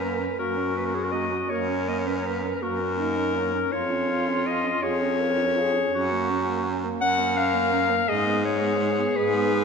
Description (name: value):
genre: classical, lyrical piece for single-reed quartet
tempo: 55 BPM (dotted quarters)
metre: 12/8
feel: rubato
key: F# major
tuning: A4 = 440 Hz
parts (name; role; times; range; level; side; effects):
- bright clarinet; melody; 0.0-9.6 s; G#4 to F#5; -26 LUFS; left 4 dB; none
- mellow alto saxophone; second line; 0.0-9.6 s; G#3 to E#4; -31 LUFS; right 7 dB; none
- mellow tenor saxophone; accompaniment; 0.0-9.6 s; C#4 to A#4; -28 LUFS; left 1 dB; none
- clear baritone saxophone; bass; 0.0-9.6 s; E#2 to G#2; -29 LUFS; right 1 dB; none
room: wet scoring stage reverb, RT60 2.0 s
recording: recorded in a church or concert hall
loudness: -22 LUFS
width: side -5 dB against mid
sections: 0.0-9.6 A section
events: none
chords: 0.0 F#; 3.7 C#/E#; 5.9 F#; 8.1 G#m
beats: 0.39 1.52 2.63 | 3.73 4.83 5.93 7.01 | 8.09 9.17